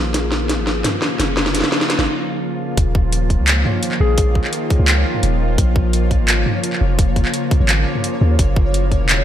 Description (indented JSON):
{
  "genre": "half-time drum and bass",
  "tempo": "171 BPM",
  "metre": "4/4",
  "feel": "half-time",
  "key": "Eb minor",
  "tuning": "A4 = 442 Hz",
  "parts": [
    { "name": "bowed-like drone", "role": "sustained chords", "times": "0.0-9.2 s", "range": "Db3 to F4", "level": "-22 LUFS", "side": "equal", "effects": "built-in reverb, sidechain pumping" },
    { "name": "long sustained 808-style bass", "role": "bass", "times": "0.0-9.2 s", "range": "Eb1 to Eb2", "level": "-17 LUFS", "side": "equal", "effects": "none" },
    { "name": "riser", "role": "sound effects", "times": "0.2-2.1 s", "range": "none", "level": "-28 LUFS", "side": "equal", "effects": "none" },
    { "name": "pulsing gated texture", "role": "texture", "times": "0.0-9.2 s", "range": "Ab4 to Db5", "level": "-31 LUFS", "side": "equal", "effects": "chorus, built-in reverb" },
    { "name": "drum and bass drum kit", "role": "drums", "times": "0.1-9.2 s", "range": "handclaps, hi-hat, snare drum, toms", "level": "-19 LUFS", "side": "equal", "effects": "none" },
    { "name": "electronic kick drum", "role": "drums", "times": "2.8-9.0 s", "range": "none", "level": "-16 LUFS", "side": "equal", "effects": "none" },
    { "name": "soft struck synth lead", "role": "melody", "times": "4.0-4.5 s", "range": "Ab4", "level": "-24 LUFS", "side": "left 5 dB", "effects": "chorus, tape echo" }
  ],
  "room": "light reverb, digital ambience",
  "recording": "none",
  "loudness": "-15 LUFS",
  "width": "side -11 dB against mid",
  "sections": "0.0-2.8 A section; 2.8-9.2 B section",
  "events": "build-up 0.0-2.8; drum fill 0.0-2.1; filter sweep on synth drone 0.0-2.8; break 2.1-2.8; drop 2.8-9.2",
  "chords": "0.0 Bbm; 2.8 Ebsus2; 5.6 Bbm; 8.4 Gb7"
}